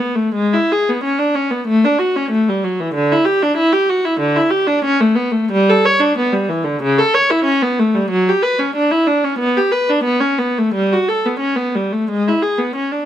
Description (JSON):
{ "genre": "classical, baroque-style suite movement for unaccompanied viola", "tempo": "92 BPM", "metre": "4/4", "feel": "uneven beats, rubato", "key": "D major", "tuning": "A4 = 439 Hz", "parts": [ { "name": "rich viola", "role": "solo", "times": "0.0-13.1 s", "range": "C#3 to C#5", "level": "-14 LUFS", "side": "equal", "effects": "none" } ], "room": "light reverb", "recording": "close, detailed microphones", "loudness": "-13 LUFS", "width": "side -11 dB against mid", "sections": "0.0-13.1 A section", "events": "none", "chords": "none" }